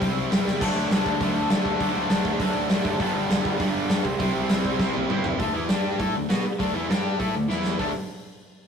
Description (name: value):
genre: punk rock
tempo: 201 BPM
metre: 4/4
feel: straight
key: D mixolydian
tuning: A4 = 440 Hz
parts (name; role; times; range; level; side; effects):
- distorted electric guitar; riff; 0.0-7.9 s; G2 to B4; -27 LUFS; left 6 dB; distortion
- distorted electric guitar; riff; 0.0-7.9 s; G2 to B4; -31 LUFS; right 9 dB; overdrive
- fuzz picked electric bass; bass; 0.0-7.9 s; E1 to D3; -36 LUFS; right 1 dB; overdrive
- big rock drum kit; drums; 0.0-7.9 s; crash cymbal, hi-hat, kick drum, snare drum, toms; -25 LUFS; equal; none
- fuzz guitar; riff; 0.6-5.2 s; G2 to E4; -30 LUFS; right 4 dB; distortion
room: light reverb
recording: rough rehearsal-room recording, warm saturation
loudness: -22 LUFS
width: side -7 dB against mid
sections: 0.0-5.4 A section; 5.4-7.8 B section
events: drum fill 0.5, 4.8-5.4, 7.5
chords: 0.0 C; 0.6 D; 3.0 G; 4.0 C; 5.4 D5; 5.7 G5; 6.0 D; 6.9 G5; 7.2 D5; 7.5 E5; 7.8 D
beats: 0.02 0.32 | 0.61 0.91 1.21 1.51 | 1.81 2.10 2.40 2.70 | 3.00 3.30 3.60 3.89 | 4.19 4.49 4.79 5.09 | 5.39 5.69 5.99 6.29 | 6.58 6.88 7.18 7.49 | 7.79